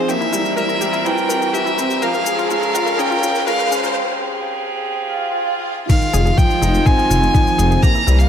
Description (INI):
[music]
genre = piano and strings electronica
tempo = 124 BPM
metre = 4/4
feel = straight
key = F minor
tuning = A4 = 440 Hz
[part]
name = rich violin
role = melody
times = 0.0-8.3 s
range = C5 to Bb5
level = -21 LUFS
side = equal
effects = none
[part]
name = dark string quartet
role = sustained chords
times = 0.0-8.3 s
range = C3 to Bb4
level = -25 LUFS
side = right 2 dB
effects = sidechain pumping
[part]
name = warm concert grand piano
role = riff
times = 0.0-8.3 s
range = Eb3 to Ab4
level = -22 LUFS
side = right 1 dB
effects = digital delay
[part]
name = riser and swell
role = sound effects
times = 0.0-5.9 s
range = none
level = -25 LUFS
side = right 1 dB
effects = none
[part]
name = analog pluck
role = arpeggios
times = 0.1-8.1 s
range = Eb4 to Bb4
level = -26 LUFS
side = left 4 dB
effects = chorus, sidechain pumping, digital delay
[part]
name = electronic shaker and crash cymbal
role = drums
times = 0.1-8.3 s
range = none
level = -29 LUFS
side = left 4 dB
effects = high-pass filter on perc, high-pass filter on cymbals
[part]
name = electronic kick drum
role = drums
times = 5.9-7.9 s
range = none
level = -14 LUFS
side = left 1 dB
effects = none
[part]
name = dark detuned saw bass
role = bass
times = 6.1-8.2 s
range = F1 to C2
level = -15 LUFS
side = left 1 dB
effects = sidechain pumping
[sound]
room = moderate huge ambient reverb, RT60 4.6 s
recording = high-pass filter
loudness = -15 LUFS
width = side -8 dB against mid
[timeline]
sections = 0.0-5.9 A section; 5.9-8.3 B section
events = build-up 0.0-5.9; riser 0.0-4.0; break 4.0-5.9; swell 5.1-5.9; drop 5.9-8.3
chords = 0.1 C7; 2.0 Bbm7; 4.0 Abmaj7; 5.9 Fm7